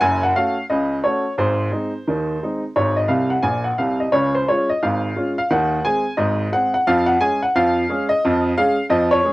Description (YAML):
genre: ragtime piano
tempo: 88 BPM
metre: 2/4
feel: swing 60% on 16ths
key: Db major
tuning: A4 = 440 Hz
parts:
  - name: clear upright piano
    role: solo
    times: 0.0-9.3 s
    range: Gb1 to Ab5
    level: -17 LUFS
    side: equal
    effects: cassette tape
room: light reverb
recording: home recording on cassette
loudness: -17 LUFS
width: side -19 dB against mid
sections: 0.0-9.3 A section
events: upright piano fill 3.1-4.1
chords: 0.0 Gbm; 1.4 Ab; 4.1 Db; 5.5 Ab/Eb; 6.8 Db/F